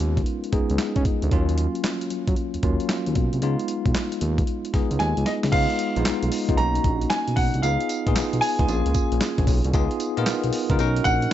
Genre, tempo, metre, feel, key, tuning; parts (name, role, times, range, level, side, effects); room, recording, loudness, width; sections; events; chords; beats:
R&B, new jack swing; 114 BPM; 4/4; swing 65% on 16ths; A4 = 440 Hz
bell-like tine electric piano; accompaniment; 0.0-11.3 s; Gb3 to Bb4; -26 LUFS; left 1 dB; medium stereo tremolo
smooth synth bass; bass; 0.0-11.3 s; Bb1 to Db3; -24 LUFS; equal
dusty soul sampler-style drum kit; drums; 0.0-11.3 s; crash cymbal, handclaps, hi-hat, kick drum, snare drum, tambourine; -25 LUFS; equal; overdrive
clear baby grand piano; melody; 5.0-11.3 s; Eb5 to A#5; -26 LUFS; right 1 dB; digital delay
little or no reverb; nothing above 7.9 kHz; -20 LUFS; side -12 dB against mid
0.0-5.5 A section; 5.5-11.3 B section
drum fill 5.0-5.5
0.0 Db9; 1.3 Ebm7; 3.4 Db9; 5.5 Db7; 6.6 Bmaj7; 7.6 Db7; 8.7 Bbm7; 9.7 Db7; 10.8 Bmaj7
0.26 0.79 | 1.31 1.84 2.37 2.89 | 3.42 3.95 4.47 5.00 | 5.53 6.05 6.58 7.10 | 7.63 8.16 8.68 9.21 | 9.74 10.26 10.79 11.31